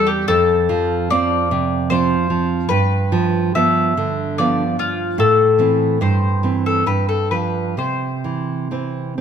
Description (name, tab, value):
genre	romantic duo for mandolin and classical guitar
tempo	63-77 BPM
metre	3/4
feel	rubato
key	C major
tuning	A4 = 440 Hz
part	mandolin	melody	0.0-9.2 s	F4 to E5	-18 LUFS	left 4 dB	none
part	nylon-string guitar	accompaniment	0.0-9.2 s	E2 to D4	-18 LUFS	right 3 dB	none
room	moderate scoring stage reverb, RT60 1.9 s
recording	close, detailed microphones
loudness	-15 LUFS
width	side -8 dB against mid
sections	0.0-9.2 A section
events	none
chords	0.3 F; 2.7 G7; 5.2 Am; 6.0 C/G; 6.9 G7; 7.8 C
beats	| 0.28 1.12 1.91 | 2.71 3.56 4.38 | 5.19 6.01 6.87 | 7.78 8.71